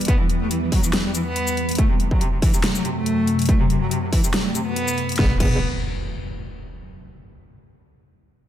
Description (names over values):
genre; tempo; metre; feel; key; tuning
heavy wobble dubstep; 141 BPM; 4/4; swing 54% on 16ths, half-time; unclear; A4 = 440 Hz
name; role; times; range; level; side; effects
evolving wavetable pad; sustained chords; 0.0-5.4 s; E2 to B3; -26 LUFS; left 1 dB; ensemble chorus, built-in reverb, phaser, sidechain pumping
dubstep drum kit; drums; 0.0-5.5 s; crash cymbal, hi-hat, shaker, snare drum; -26 LUFS; left 1 dB; none
impact; sound effects; 0.0-0.1, 5.2-6.9 s; none; -28 LUFS; equal; none
clear cello; melody; 0.1-5.6 s; C3 to B3; -25 LUFS; equal; tape echo
electronic kick drum; drums; 0.1-5.5 s; none; -20 LUFS; equal; distortion
metallic wobble bass; bass; 5.2-5.6 s; E1; -22 LUFS; equal; chorus, overdrive
room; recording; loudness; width
light reverb; none; -18 LUFS; side -11 dB against mid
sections
0.0-5.2 A section; 5.2-6.9 B section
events
none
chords
0.0 Em; 1.8 F#dim; 5.2 N.C.